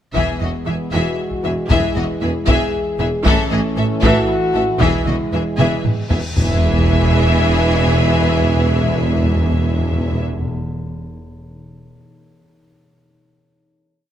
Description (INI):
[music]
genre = cinematic, epic orchestral film score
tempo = 77 BPM (dotted quarters)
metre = 6/8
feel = straight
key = E major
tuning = A4 = 439 Hz
[part]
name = warm symphonic violin section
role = melody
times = 0.1-10.2 s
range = D#5 to E5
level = -24 LUFS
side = left 4 dB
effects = none
[part]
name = rich symphonic violin section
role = second line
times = 0.1-10.2 s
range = F#4 to A4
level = -26 LUFS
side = left 3 dB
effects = none
[part]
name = warm symphonic viola section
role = accompaniment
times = 0.1-10.2 s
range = E3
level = -24 LUFS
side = right 1 dB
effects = none
[part]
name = bright trombone section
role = sustained chords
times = 0.1-10.2 s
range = E3 to A3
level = -26 LUFS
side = right 4 dB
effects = none
[part]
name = mellow French horn section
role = sustained chords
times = 0.1-10.2 s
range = B3 to G#4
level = -25 LUFS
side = left 4 dB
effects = none
[part]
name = mellow tuba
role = bass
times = 0.1-10.2 s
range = E1 to A1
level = -24 LUFS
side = right 3 dB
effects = none
[part]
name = rich symphonic cello section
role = bass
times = 0.1-10.2 s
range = E2 to A2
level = -24 LUFS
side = right 2 dB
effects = none
[part]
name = taiko ensemble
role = drums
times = 0.1-6.5 s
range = none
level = -20 LUFS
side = left 1 dB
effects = none
[part]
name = timpani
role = percussion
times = 0.1-0.9, 6.4-10.5 s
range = E2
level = -22 LUFS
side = left 1 dB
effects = none
[part]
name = dark symphonic double bass section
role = bass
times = 0.2-10.2 s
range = E1 to A1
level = -23 LUFS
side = right 2 dB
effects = none
[part]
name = cymbal swell and sub drop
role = sound effects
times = 5.9-7.9 s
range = none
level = -27 LUFS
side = left 1 dB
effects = none
[sound]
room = light reverb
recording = close, detailed microphones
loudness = -14 LUFS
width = side -10 dB against mid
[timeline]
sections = 0.1-6.4 theme; 6.4-9.5 final chord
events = drum fill 5.6-6.4; cymbal swell 5.9-6.4; impact 6.4-7.9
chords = 0.1 E; 3.3 A; 4.8 E